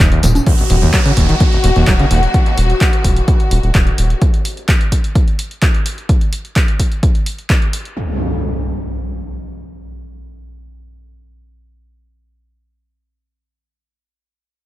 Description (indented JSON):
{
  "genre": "acid house",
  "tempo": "128 BPM",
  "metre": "4/4",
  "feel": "straight",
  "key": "Eb minor",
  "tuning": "A4 = 444 Hz",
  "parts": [
    { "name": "overdriven acid bass", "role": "riff", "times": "0.0-2.2 s", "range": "Eb1 to Gb3", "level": "-16 LUFS", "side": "equal", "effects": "distortion, lush chorus, dub echo" },
    { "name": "round analog bass", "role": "bass", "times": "0.0-4.1 s", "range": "Eb1", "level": "-15 LUFS", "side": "equal", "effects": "sidechain pumping" },
    { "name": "electronic kick drum", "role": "drums", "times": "0.0-7.6 s", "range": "none", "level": "-13 LUFS", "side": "equal", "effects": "overdrive" },
    { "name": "punchy analog drum machine", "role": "drums", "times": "0.0-7.9 s", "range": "congas, handclaps, hi-hat, tambourine, toms", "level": "-21 LUFS", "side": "equal", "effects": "overdrive" },
    { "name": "clear symphonic string section", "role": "sustained chords", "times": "0.5-4.2 s", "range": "Gb4", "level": "-21 LUFS", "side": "left 4 dB", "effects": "sidechain pumping" },
    { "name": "downlifter and impact", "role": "sound effects", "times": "0.5-4.2, 8.0-12.3 s", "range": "none", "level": "-24 LUFS", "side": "equal", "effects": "none" }
  ],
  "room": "digital ambience",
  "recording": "echo-heavy mix",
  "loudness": "-12 LUFS",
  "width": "side -16 dB against mid",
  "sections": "0.5-8.0 A section; 8.0-11.7 B section",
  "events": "none",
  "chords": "0.5 Ebm; 8.0 N.C."
}